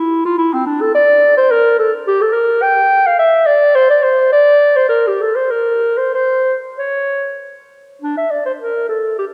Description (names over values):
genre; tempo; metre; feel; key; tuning
classical, baroque-style fantasia for unaccompanied clarinet; 92-108 BPM; 3/4; rubato; D minor; A4 = 440 Hz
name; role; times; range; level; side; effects
dark clarinet; solo; 0.0-9.3 s; C4 to G5; -14 LUFS; equal; none
room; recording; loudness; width
wet church reverb, RT60 2.8 s; none; -14 LUFS; mono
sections
0.0-8.0 A section; 8.0-9.3 B section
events
none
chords
none